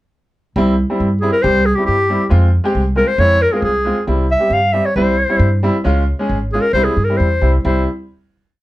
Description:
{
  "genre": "klezmer",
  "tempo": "135 BPM",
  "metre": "2/4",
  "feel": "straight",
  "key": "C phrygian dominant",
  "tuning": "A4 = 440 Hz",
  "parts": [
    { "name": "bright upright piano", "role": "accompaniment", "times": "0.6-7.9 s", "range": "G3 to Ab4", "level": "-19 LUFS", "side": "equal", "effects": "none" },
    { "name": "upright bass", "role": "bass", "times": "0.6-7.9 s", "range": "Ab1 to G2", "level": "-16 LUFS", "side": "equal", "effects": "none" },
    { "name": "clear clarinet", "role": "melody", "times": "1.2-7.8 s", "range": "G4 to F5", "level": "-15 LUFS", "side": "left 1 dB", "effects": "none" }
  ],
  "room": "light reverb",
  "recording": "none",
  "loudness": "-13 LUFS",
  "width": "side -16 dB against mid",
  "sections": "0.6-7.6 A section; 7.6-8.5 final chord",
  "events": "none",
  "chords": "0.6 C; 2.3 Fm; 4.1 C; 5.9 Db; 6.7 C",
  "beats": "| 0.56 1.00 | 1.44 1.88 | 2.31 2.75 | 3.19 3.63 | 4.08 4.52 | 4.96 5.41 | 5.85 6.30 | 6.75 7.20 | 7.64"
}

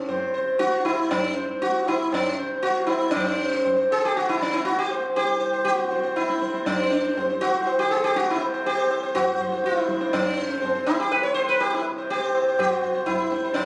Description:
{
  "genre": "indian classical, Hindustani",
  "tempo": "120 BPM",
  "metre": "7/4",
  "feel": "straight",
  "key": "unclear",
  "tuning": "A4 = 440 Hz",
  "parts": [
    { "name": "sitar", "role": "melody", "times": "0.0-13.7 s", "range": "Db4 to Db5", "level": "-24 LUFS", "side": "equal", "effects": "none" },
    { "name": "tanpura", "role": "drone", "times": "0.0-13.7 s", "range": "C2 to C3", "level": "-38 LUFS", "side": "equal", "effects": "none" },
    { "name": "tabla", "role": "percussion", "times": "0.1-13.7 s", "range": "none", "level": "-33 LUFS", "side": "equal", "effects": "none" }
  ],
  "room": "wet recital hall reverb, RT60 1.5 s",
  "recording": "recorded on a phone in the room, studio reverb, compression",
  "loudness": "-23 LUFS",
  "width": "mono",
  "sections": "0.0-3.1 A section; 3.1-13.7 B section",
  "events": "speeding up 0.0-13.7",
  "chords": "none",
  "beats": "0.08 0.60 1.11 1.62 2.13 2.64 | 3.15 3.65 4.16 4.66 5.17 5.67 6.17 | 6.67 7.17 7.67 8.16 8.66 9.16 9.65 | 10.14 10.63 11.13 11.62 12.11 12.59 13.08 | 13.56"
}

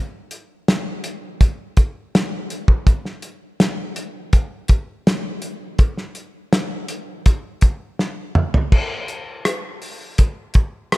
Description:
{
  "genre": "soul",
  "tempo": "82 BPM",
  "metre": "4/4",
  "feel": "straight",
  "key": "none",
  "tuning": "none",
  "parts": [
    { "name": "cloth-damped thuddy drum kit", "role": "drums", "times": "0.3-11.0 s", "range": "crash cymbal, hi-hat, kick drum, rim click, snare drum, toms", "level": "-17 LUFS", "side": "equal", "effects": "none" }
  ],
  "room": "little or no reverb",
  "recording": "none",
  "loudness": "-18 LUFS",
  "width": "side -18 dB against mid",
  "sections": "0.0-8.7 A section; 8.7-11.0 B section",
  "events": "drum fill 8.0-8.7",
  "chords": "none",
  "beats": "0.67 1.41 2.14 | 2.87 3.60 4.33 5.06 | 5.79 6.53 7.26 7.99 | 8.73 9.46 10.19 10.93"
}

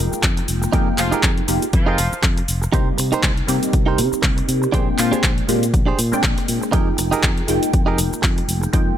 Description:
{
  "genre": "filtered disco house",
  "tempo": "120 BPM",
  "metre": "4/4",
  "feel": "swing 57% on 16ths",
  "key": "F dorian",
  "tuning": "A4 = 439 Hz",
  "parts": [
    { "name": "funky polysynth comp", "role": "accompaniment", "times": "0.0-9.0 s", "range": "G3 to G5", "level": "-23 LUFS", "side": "equal", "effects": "chorus, phaser, sidechain pumping" },
    { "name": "fingered electric bass", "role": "bass", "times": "0.0-8.9 s", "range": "F1 to C3", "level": "-22 LUFS", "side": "equal", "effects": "sidechain pumping" },
    { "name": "direct-recorded clean electric guitar", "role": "riff", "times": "0.1-8.7 s", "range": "D4 to C5", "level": "-25 LUFS", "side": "right 6 dB", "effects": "sidechain pumping" },
    { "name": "punchy analog drum machine", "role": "drums", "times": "0.1-8.8 s", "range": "handclaps, hi-hat, shaker", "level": "-23 LUFS", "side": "left 1 dB", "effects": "overdrive, sidechain pumping on hats, sidechain pumping on perc" },
    { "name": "electronic kick drum", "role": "drums", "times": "0.2-8.8 s", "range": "none", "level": "-20 LUFS", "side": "equal", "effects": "overdrive" },
    { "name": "clear horn section", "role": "melody", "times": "1.0-5.1 s", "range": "F3 to F4", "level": "-28 LUFS", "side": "equal", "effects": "vintage 12-bit sampler grit, sidechain pumping, tape echo" }
  ],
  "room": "light reverb, digital ambience",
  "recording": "none",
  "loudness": "-16 LUFS",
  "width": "side -10 dB against mid",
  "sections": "0.0-9.0 A section",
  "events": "none",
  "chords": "0.0 Fm11; 2.7 Cm7; 4.7 Bb13; 6.7 Fm11",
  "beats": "0.23 | 0.73 1.24 1.74 2.23 | 2.73 3.23 3.73 4.24 | 4.74 5.24 5.74 6.24 | 6.74 7.24 7.74 8.23 | 8.73"
}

